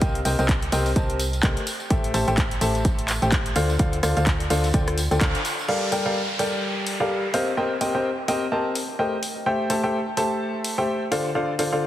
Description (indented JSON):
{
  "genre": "piano house",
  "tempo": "127 BPM",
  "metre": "4/4",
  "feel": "swing 58% on 16ths",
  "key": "G minor",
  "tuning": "A4 = 440 Hz",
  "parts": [
    { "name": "clear grand piano", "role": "riff", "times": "0.0-11.9 s", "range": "D3 to A5", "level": "-23 LUFS", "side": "left 1 dB", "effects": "sidechain pumping, low-pass filter, digital delay" },
    { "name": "solid FM bass", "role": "bass", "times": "0.0-5.4 s", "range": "A1 to D2", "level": "-25 LUFS", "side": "equal", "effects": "sidechain pumping" },
    { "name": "electronic kick drum", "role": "drums", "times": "0.0-5.3 s", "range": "none", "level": "-22 LUFS", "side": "equal", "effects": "none" },
    { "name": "punchy analog drum machine", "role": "drums", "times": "0.0-11.7 s", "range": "crash cymbal, handclaps, hi-hat, rim click", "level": "-29 LUFS", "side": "equal", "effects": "overdrive" },
    { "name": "tambourine", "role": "percussion", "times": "0.0-5.7 s", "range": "none", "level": "-36 LUFS", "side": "right 2 dB", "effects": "none" },
    { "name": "downlifter", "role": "sound effects", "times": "5.7-9.5 s", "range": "none", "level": "-32 LUFS", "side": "equal", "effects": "none" }
  ],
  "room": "moderate lush hall reverb, RT60 2.3 s",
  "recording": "heavily compressed radio sound, multiband compression",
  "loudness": "-21 LUFS",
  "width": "side -12 dB against mid",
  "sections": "0.0-5.7 A section; 5.7-11.9 B section",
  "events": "band accent 5.2",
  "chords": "0.0 Cm7; 1.7 Am7; 3.6 Dm7; 5.7 Gm9; 7.3 Cm7; 9.2 Am7; 11.1 Dm7"
}